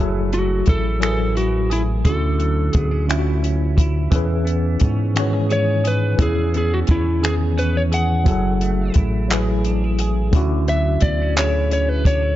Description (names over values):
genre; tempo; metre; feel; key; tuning
slow six-eight R&B; 58 BPM (dotted quarters); 6/8; straight; F# minor; A4 = 444 Hz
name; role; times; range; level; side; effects
clean electric guitar; second line; 0.0-12.4 s; D3 to G#4; -28 LUFS; right 6 dB; analog chorus, digital delay
tine electric piano; accompaniment; 0.0-12.4 s; D3 to G#5; -24 LUFS; left 1 dB; overdrive, fast stereo tremolo
round analog bass; bass; 0.0-12.4 s; F#1 to G#2; -20 LUFS; equal; none
lightly driven lead guitar; melody; 0.3-12.4 s; E4 to F#5; -23 LUFS; left 1 dB; none
compact cocktail drum kit; drums; 0.3-12.2 s; finger snaps, handclaps, hi-hat, kick drum; -19 LUFS; equal; none
room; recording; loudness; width
studio reverb; dark, warm production, nothing above 7.6 kHz; -16 LUFS; side -14 dB against mid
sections
0.0-12.4 A section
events
lead electric guitar solo 0.0-12.4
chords
0.0 F#m9; 2.1 Dmaj9; 4.1 C#m7/E; 8.3 F#m9; 10.3 Dmaj9